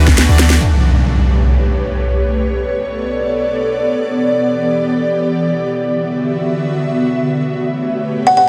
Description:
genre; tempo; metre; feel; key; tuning
future bass; free time; none; none; unclear; A4 = 443 Hz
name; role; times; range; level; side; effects
big bright polysynth; riff; 0.0-0.6 s; E3 to D5; -26 LUFS; equal; subtle chorus, sidechain pumping, tape echo
long sustained 808-style bass; bass; 0.0-0.6 s; D2; -12 LUFS; equal; tube saturation, sidechain pumping
trap drum kit; drums; 0.1-0.6 s; hi-hat, snare drum; -21 LUFS; equal; none
ethereal airy pad; sustained chords; 1.3-8.5 s; D3 to E5; -18 LUFS; equal; ensemble chorus, built-in reverb, sidechain pumping
impact; sound effects; 0.6-2.3 s; none; -17 LUFS; equal; none
buzzing kalimba; melody; 8.3-8.4 s; F#5; -10 LUFS; equal; vintage 12-bit sampler grit, sidechain pumping
room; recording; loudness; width
light reverb; dense, heavily limited modern master; -16 LUFS; mono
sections
0.6-8.5 A section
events
drum fill 0.0-0.6; impact 0.6-2.3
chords
0.0 D69; 0.6 A9; 2.3 Bm9; 4.0 Em7; 5.7 D69; 7.4 A9

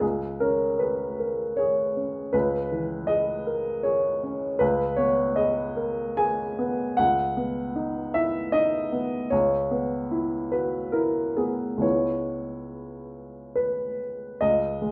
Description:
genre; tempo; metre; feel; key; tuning
neoclassical minimalist piano; 65-80 BPM; 3/4; rubato; C# dorian; A4 = 440 Hz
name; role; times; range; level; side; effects
warm upright piano; solo; 0.0-14.9 s; C#2 to G#5; -26 LUFS; equal; none
room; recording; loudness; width
wet studio reverb, RT60 0.6 s; rough home demo mix; -26 LUFS; mono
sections
0.0-14.4 A section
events
none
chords
0.0 C#m7; 4.6 G#m/C#; 7.0 B/C#; 9.3 C#m7; 14.4 G#5/C#

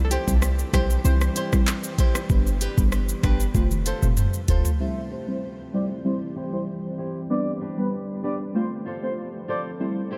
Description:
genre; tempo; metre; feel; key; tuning
dancehall; 96 BPM; 4/4; straight; C major; A4 = 441 Hz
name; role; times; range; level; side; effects
soft round pluck; second line; 0.0-2.3 s; G4 to C5; -38 LUFS; equal; chorus, delay
deep mellow chord stab; accompaniment; 0.0-10.0 s; G3 to C5; -31 LUFS; equal; chorus, low-pass filter
deep dark ambient pad; sustained chords; 0.0-10.2 s; E3 to G4; -38 LUFS; equal; chorus, built-in reverb, sidechain pumping, low-pass filter
short 808-style bass; bass; 0.0-4.6 s; E1 to C2; -25 LUFS; equal; none
flamenco guitar; arpeggios; 0.1-10.2 s; D4 to C5; -37 LUFS; equal; low-pass filter, delay
afro-pop drum kit; drums; 0.1-4.8 s; handclaps, hi-hat, kick drum, rim click, shaker, toms; -26 LUFS; equal; overdrive
breathy flute-like synth lead; melody; 4.8-9.6 s; B4 to E5; -38 LUFS; equal; chorus, low-pass filter, delay
room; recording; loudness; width
light reverb, digital ambience; none; -24 LUFS; mono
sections
0.0-4.8 A section; 4.8-10.2 B section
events
drum fill 3.5-4.8; filter sweep 4.8-10.2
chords
0.0 C; 2.3 G; 3.5 F; 4.8 C; 7.3 G; 8.5 F

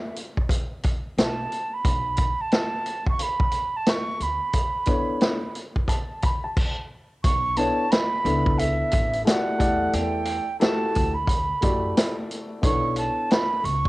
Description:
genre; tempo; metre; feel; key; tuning
hip hop, jazz-hop; 89 BPM; 4/4; swing 60% on 16ths; B minor; A4 = 440 Hz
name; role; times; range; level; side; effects
mellow concert flute; melody; 0.0-13.9 s; E5 to C#6; -26 LUFS; right 2 dB; cassette tape
vintage drum kit; drums; 0.2-13.9 s; crash cymbal, hi-hat, kick drum, snare drum; -24 LUFS; equal; vintage 12-bit sampler grit, cassette tape
upright bass; bass; 1.2-13.9 s; A1 to F#2; -29 LUFS; equal; none
dark concert grand piano; accompaniment; 4.9-13.6 s; A3 to B5; -27 LUFS; left 2 dB; cassette tape
room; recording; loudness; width
light reverb, studio reverb; home recording on cassette; -21 LUFS; side -19 dB against mid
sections
0.0-7.2 A section; 7.2-13.9 B section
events
none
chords
0.0 Esus4 (rootless); 1.8 Bm11; 9.6 Em11; 12.6 Bm11

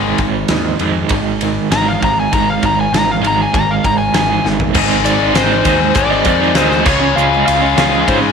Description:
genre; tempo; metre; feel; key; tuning
classic rock; 99 BPM; 4/4; straight; unclear; A4 = 440 Hz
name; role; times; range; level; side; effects
crunchy overdriven guitar; riff; 0.0-8.3 s; Ab2 to F4; -17 LUFS; right 13 dB; tremolo
tight distorted guitar; riff; 0.0-8.3 s; Ab2 to Ab4; -18 LUFS; left 14 dB; distortion
growling picked electric bass; bass; 0.0-8.3 s; Ab1 to Ab2; -21 LUFS; left 1 dB; overdrive
huge arena drum kit; drums; 0.2-8.2 s; crash cymbal, kick drum, ride cymbal, snare drum, toms; -18 LUFS; equal; none
overdriven slide guitar; melody; 1.7-8.2 s; C5 to Bb5; -17 LUFS; left 2 dB; slapback echo
egg shaker; percussion; 4.7-8.0 s; none; -36 LUFS; left 15 dB; none
room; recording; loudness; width
moderate echo chamber reverb, RT60 2.4 s; 1960s-style stereo with parts hard left and right; -11 LUFS; side -6 dB against mid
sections
0.0-4.7 A section; 4.7-8.3 B section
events
electric slide guitar solo 0.0-4.7; drum fill 4.4-4.7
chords
0.0 Ab5; 4.7 Ab; 6.9 Db

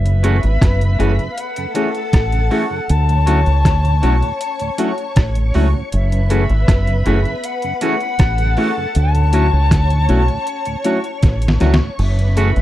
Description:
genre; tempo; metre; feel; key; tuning
lovers rock reggae; 79 BPM; 4/4; straight; F# minor; A4 = 440 Hz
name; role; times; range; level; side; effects
bright reedy concert flute; melody; 0.0-12.6 s; E5 to A5; -23 LUFS; left 4 dB; tape echo
string machine, full ensemble; second line; 0.0-12.6 s; A4 to C#6; -27 LUFS; left 1 dB; ensemble chorus
mellow tonewheel organ; accompaniment; 0.0-12.5 s; D2 to F#4; -28 LUFS; right 5 dB; overdrive, chorus vibrato, slow rotary speaker
deep dub fingered electric bass; bass; 0.0-12.6 s; F#1 to D2; -14 LUFS; equal; none
detuned 8-bit digital drum machine; drums; 0.1-12.6 s; crash cymbal, hi-hat, kick drum, rim click, snare drum; -16 LUFS; equal; overdrive
mellow FM electric piano; accompaniment; 0.2-12.5 s; A3 to G#4; -21 LUFS; left 3 dB; chorus, slapback echo
twangy electric guitar; stabs; 0.2-12.5 s; E3 to F#4; -23 LUFS; right 4 dB; none
room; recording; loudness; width
little or no reverb; dry, close 1970s-style studio recording; -14 LUFS; side -14 dB against mid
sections
0.0-12.6 A section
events
drum fill 11.2-12.0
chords
0.0 F#m7; 2.9 Dmaj7; 5.9 F#m7; 9.0 Dmaj7; 12.0 F#m7

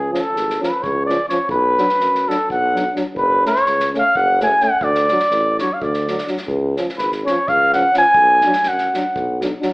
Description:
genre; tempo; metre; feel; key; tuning
balkan folk, Balkan brass band; 252 BPM (eighths); 7/8; straight; C# phrygian dominant; A4 = 441 Hz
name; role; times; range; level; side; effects
warm flugelhorn; melody; 0.0-9.4 s; G#4 to G#5; -15 LUFS; equal; none
warm tuba; bass; 0.0-9.5 s; F#1 to F#2; -23 LUFS; equal; none
warm euphonium; accompaniment; 0.1-9.7 s; C#4 to D4; -27 LUFS; left 2 dB; none
warm euphonium; accompaniment; 0.1-9.7 s; E#3 to A3; -26 LUFS; right 1 dB; none
unplugged drum kit; percussion; 0.1-9.7 s; kick drum, snare drum; -32 LUFS; equal; none
room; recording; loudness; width
moderate large studio reverb, RT60 0.9 s; band playing live in one room, AM radio sound; -14 LUFS; side -26 dB against mid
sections
0.0-9.7 A section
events
flugelhorn solo 0.0-9.7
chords
0.0 C#; 1.5 Bm; 3.2 F#m; 4.8 D; 6.5 C#; 8.2 Bm

